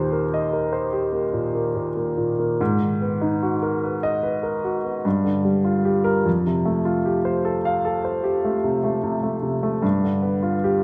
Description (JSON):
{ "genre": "classical, impressionist solo piano", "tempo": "49 BPM (dotted quarters)", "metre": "9/8", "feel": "rubato", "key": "unclear", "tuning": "A4 = 441 Hz", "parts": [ { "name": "warm grand piano", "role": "solo", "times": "0.0-10.8 s", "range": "Eb2 to F5", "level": "-22 LUFS", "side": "equal", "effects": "none" } ], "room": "moderate concert hall reverb, RT60 1.8 s", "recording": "none", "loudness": "-22 LUFS", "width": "mono", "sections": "0.0-10.8 A section", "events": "none", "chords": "0.0 Eb6; 2.6 Abm9; 5.0 Gm7; 6.3 Fadd9; 9.8 G7" }